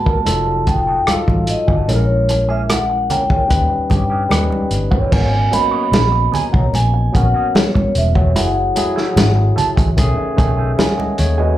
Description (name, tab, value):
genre	lush 1970s-style soul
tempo	74 BPM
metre	4/4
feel	straight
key	G# minor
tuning	A4 = 440 Hz
part	vibraphone with soft mallets	melody	0.0-9.5 s	C#5 to B5	-19 LUFS	equal	slapback echo
part	barky tine electric piano	accompaniment	0.0-11.6 s	D#3 to F#5	-22 LUFS	left 2 dB	overdrive, slapback echo
part	vintage muted fingered electric bass	bass	0.0-11.5 s	E1 to G2	-17 LUFS	equal	none
part	electric guitar through a small old amp	riff	0.1-11.6 s	A3 to A#4	-24 LUFS	right 5 dB	wah, slapback echo
part	vintage drum kit	drums	0.1-11.4 s	crash cymbal, hi-hat, kick drum, rim click, snare drum	-18 LUFS	equal	none
part	congas	percussion	0.3-11.2 s	none	-24 LUFS	right 3 dB	none
part	large celesta	texture	5.5-11.6 s	D#5 to G#5	-30 LUFS	left 1 dB	none
room	little or no reverb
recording	live gig heard through the venue's PA, club reverb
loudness	-13 LUFS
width	side -13 dB against mid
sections	0.0-5.1 A section; 5.1-11.6 B section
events	none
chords	0.3 F7b9; 1.9 A#m7b5; 3.5 D#7b13; 5.1 G#m11; 8.4 F#m9; 10.0 B13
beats	0.27 1.08 | 1.89 2.69 3.50 4.31 | 5.12 5.93 6.74 7.55 | 8.36 9.17 9.98 10.79